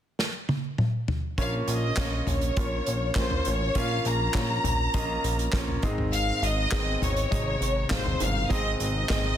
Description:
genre	piano-driven pop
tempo	101 BPM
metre	4/4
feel	straight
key	unclear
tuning	A4 = 440 Hz
part	unplugged drum kit	drums	0.2-9.2 s	handclaps, hi-hat, kick drum, snare drum, toms	-28 LUFS	equal	soft clipping on snare
part	rich studio violin section	melody	1.4-9.4 s	C5 to Bb5	-29 LUFS	left 1 dB	none
part	clear baby grand piano	accompaniment	1.4-9.4 s	Ab2 to F5	-31 LUFS	equal	none
part	chorused synth bass	bass	1.4-9.3 s	G1 to Bb1	-29 LUFS	equal	none
room	light reverb, small room reverb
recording	dense, heavily limited modern master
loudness	-24 LUFS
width	side -10 dB against mid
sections	0.0-1.4 A section; 1.4-9.4 B section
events	drum fill 0.2-1.4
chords	0.0 N.C.; 1.4 Bbm; 5.8 Ab

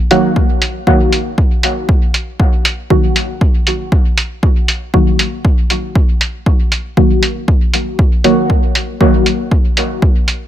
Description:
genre	dub techno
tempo	118 BPM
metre	4/4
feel	straight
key	Eb minor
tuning	A4 = 442 Hz
part	deep mellow chord stab	stabs	0.1-9.1 s	Eb3 to Gb4	-16 LUFS	equal	chorus, phaser, sidechain pumping, dub echo
part	electronic hi-hat	drums	0.1-10.4 s	none	-15 LUFS	right 1 dB	none
part	electronic kick drum	drums	0.4-10.1 s	none	-12 LUFS	equal	overdrive
room	light reverb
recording	none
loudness	-11 LUFS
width	side -11 dB against mid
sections	0.0-10.5 A section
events	none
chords	0.0 Ebm

